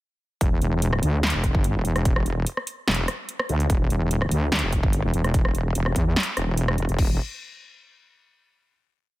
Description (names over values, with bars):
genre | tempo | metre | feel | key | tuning
heavy wobble dubstep | 146 BPM | 4/4 | half-time | E minor | A4 = 439 Hz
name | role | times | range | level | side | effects
wobble bass | bass | 0.4-7.2 s | E1 to E2 | -22 LUFS | equal | chorus, overdrive
big-room dance drum kit | drums | 0.4-7.1 s | crash cymbal, hi-hat, rim click, snare drum | -27 LUFS | equal | small room ambience
electronic kick drum | drums | 0.4-7.1 s | none | -22 LUFS | equal | small room ambience
room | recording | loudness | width
little or no reverb | none | -21 LUFS | side -17 dB against mid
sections
0.4-7.0 drop; 7.0-8.6 final note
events
drop 0.4-7.0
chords
none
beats
| 0.41 0.82 1.23 1.64 | 2.05 2.46 2.88 3.29 | 3.70 4.11 4.52 4.93 | 5.34 5.75 6.16 6.57 | 6.99